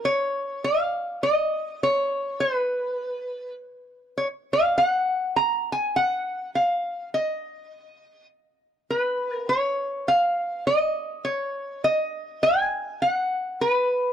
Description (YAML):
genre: hawaiian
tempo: 102 BPM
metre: 4/4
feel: swing 59% on 8ths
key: unclear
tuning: A4 = 440 Hz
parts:
  - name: lap resonator guitar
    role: solo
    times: 0.0-14.1 s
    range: B4 to A#5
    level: -22 LUFS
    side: equal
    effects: none
room: small room ambience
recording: dry, close 1970s-style studio recording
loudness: -22 LUFS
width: side -9 dB against mid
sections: 0.0-14.1 A section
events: none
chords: none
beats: | 0.03 0.62 1.21 1.80 | 2.39 2.98 3.57 4.16 | 4.75 5.34 5.93 6.52 | 7.11 7.70 8.29 8.88 | 9.47 10.06 10.65 11.24 | 11.83 12.42 13.01 13.60